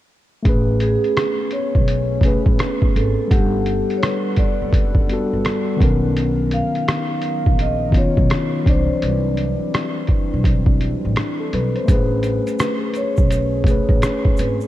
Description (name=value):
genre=lo-fi hip hop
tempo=84 BPM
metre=4/4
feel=swing 65% on 16ths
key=A major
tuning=A4 = 440 Hz
part: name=mellow tine electric piano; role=accompaniment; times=0.4-14.7 s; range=D#3 to F#5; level=-22 LUFS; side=left 2 dB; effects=low-pass filter
part: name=warbly tape-like pad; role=sustained chords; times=1.1-14.7 s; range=F#3 to F#5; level=-29 LUFS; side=equal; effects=chorus, built-in reverb, low-pass filter
part: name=upright bass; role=bass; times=0.5-14.6 s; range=F#1 to C2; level=-22 LUFS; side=equal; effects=none
part: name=lo-fi sampler-style drum kit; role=drums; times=0.5-14.6 s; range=hi-hat, kick drum, rim click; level=-18 LUFS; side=equal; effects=none
part: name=vibraphone with medium mallets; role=melody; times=0.8-14.7 s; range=G4 to F5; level=-25 LUFS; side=equal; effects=low-pass filter
part: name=egg shaker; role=percussion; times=11.9-14.7 s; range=none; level=-46 LUFS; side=right 7 dB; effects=none
room=light reverb, studio ambience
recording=cassette tape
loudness=-16 LUFS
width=side -14 dB against mid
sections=0.4-14.7 A section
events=none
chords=0.4 Amaj9; 3.3 Gmaj9; 5.8 Bmaj9; 8.7 Cmaj9; 11.9 Amaj9